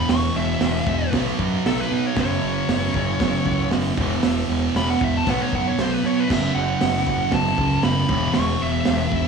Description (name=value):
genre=garage rock duo or trio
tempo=116 BPM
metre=4/4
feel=straight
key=unclear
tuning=A4 = 441 Hz
part: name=fuzz lead guitar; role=melody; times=0.0-9.3 s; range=A4 to C#6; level=-26 LUFS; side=left 1 dB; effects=distortion
part: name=thick fuzz guitar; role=riff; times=0.0-9.3 s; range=E2 to B3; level=-22 LUFS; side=right 2 dB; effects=distortion
part: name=growling fingered electric bass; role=bass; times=0.0-9.3 s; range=E1 to B2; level=-26 LUFS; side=equal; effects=overdrive
part: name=crunchy breakbeat drum kit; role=drums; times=0.1-9.2 s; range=crash cymbal, hi-hat, kick drum, snare drum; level=-25 LUFS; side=right 2 dB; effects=none
room=light reverb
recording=small room ambience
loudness=-18 LUFS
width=side -5 dB against mid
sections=0.0-9.3 A section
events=none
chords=0.0 E5; 1.1 B5; 2.2 F#5; 4.0 E5; 5.3 B5; 6.3 F#m; 8.1 E5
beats=| 0.10 0.61 1.13 1.65 | 2.17 2.69 3.20 3.72 | 4.24 4.75 5.27 5.78 | 6.30 6.81 7.33 7.84 | 8.36 8.87